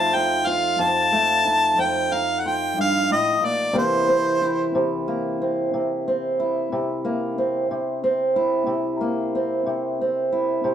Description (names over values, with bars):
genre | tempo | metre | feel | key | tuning
acoustic country blues, solo or duo | 61 BPM (dotted quarters) | 12/8 | straight | C mixolydian | A4 = 441 Hz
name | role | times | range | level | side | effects
clear harmonica | melody | 0.0-4.7 s | C5 to A5 | -20 LUFS | equal | none
fingerpicked old ladder-braced acoustic guitar | accompaniment | 0.0-10.7 s | F2 to F4 | -22 LUFS | equal | none
room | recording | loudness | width
moderate studio reverb, RT60 0.6 s | heard from further back in the room | -19 LUFS | side -9 dB against mid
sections
0.0-10.7 A section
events
none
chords
0.0 F7; 3.8 C7